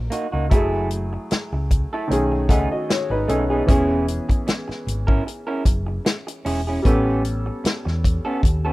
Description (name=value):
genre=lush 1970s-style soul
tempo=76 BPM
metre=4/4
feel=swing 54% on 16ths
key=B major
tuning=A4 = 436 Hz
part: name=clear concert grand piano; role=accompaniment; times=0.0-8.7 s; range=B2 to F#5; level=-24 LUFS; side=equal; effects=none
part: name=hollow-body short-scale fingered electric bass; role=bass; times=0.0-8.7 s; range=E1 to E2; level=-24 LUFS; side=equal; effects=none
part: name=electric guitar through a small old amp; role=riff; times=0.1-8.7 s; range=A3 to A#4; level=-26 LUFS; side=right 2 dB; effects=none
part: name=warm soul drum kit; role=drums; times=0.1-8.6 s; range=hi-hat, kick drum, snare drum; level=-20 LUFS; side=equal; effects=none
room=small room ambience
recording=rough home demo mix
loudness=-19 LUFS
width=side -19 dB against mid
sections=0.0-8.7 A section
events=none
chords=0.0 Bmaj7; 0.5 F#m9; 2.1 B13; 3.7 E6; 6.8 A9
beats=| 0.52 1.31 2.10 2.89 | 3.68 4.47 5.27 6.06 | 6.85 7.64 8.43